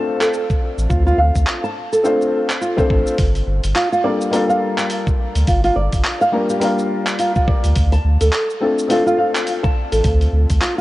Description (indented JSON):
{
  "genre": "organic downtempo",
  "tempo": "105 BPM",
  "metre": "4/4",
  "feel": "swing 59% on 16ths",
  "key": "G minor",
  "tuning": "A4 = 441 Hz",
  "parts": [
    { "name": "felt-muted upright piano", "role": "accompaniment", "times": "0.0-10.8 s", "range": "G3 to C5", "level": "-21 LUFS", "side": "left 2 dB", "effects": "sidechain pumping, digital delay" },
    { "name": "flamenco guitar", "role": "arpeggios", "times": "0.0-10.8 s", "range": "F4 to A5", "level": "-20 LUFS", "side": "right 1 dB", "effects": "digital delay" },
    { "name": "dusty soul sampler-style drum kit", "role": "drums", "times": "0.2-10.8 s", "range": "cabasa, handclaps, hi-hat", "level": "-26 LUFS", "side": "equal", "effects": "none" },
    { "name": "electronic kick drum", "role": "drums", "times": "0.5-10.6 s", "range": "none", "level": "-18 LUFS", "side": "equal", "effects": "none" },
    { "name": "warm sub bass", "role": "bass", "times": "0.8-10.6 s", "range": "G1 to D2", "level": "-16 LUFS", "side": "equal", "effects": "tube saturation" }
  ],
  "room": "light reverb",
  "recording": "worn, warbling old tape, cassette tape, warbly pitch drift, nothing above 10.7 kHz",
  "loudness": "-15 LUFS",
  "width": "side -17 dB against mid",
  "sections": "0.0-10.8 A section",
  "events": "none",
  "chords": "0.0 Dm7; 3.2 Gm9; 7.8 Dm7"
}